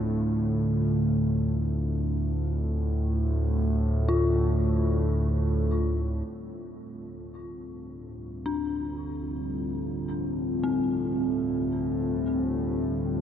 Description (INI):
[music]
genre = dark ambient drone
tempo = free time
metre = none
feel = none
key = unclear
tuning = A4 = 439 Hz
[part]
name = deep dark ambient pad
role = sustained chords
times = 0.0-13.2 s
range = D3 to A4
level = -32 LUFS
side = equal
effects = chorus, built-in reverb
[part]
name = dark detuned synth bell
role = arpeggios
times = 0.0-13.2 s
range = C4 to F4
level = -33 LUFS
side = left 3 dB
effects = chorus, diffuse ambient delay
[part]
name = analog drone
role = drone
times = 0.0-13.2 s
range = D2 to A2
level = -27 LUFS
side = equal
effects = chorus
[sound]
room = wet huge ambient reverb, RT60 7.8 s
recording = dark, warm production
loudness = -25 LUFS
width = side -9 dB against mid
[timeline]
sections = 0.0-6.3 A section; 6.3-13.2 B section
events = fade-in on synth drone 6.3-13.2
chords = 0.0 Fadd9/D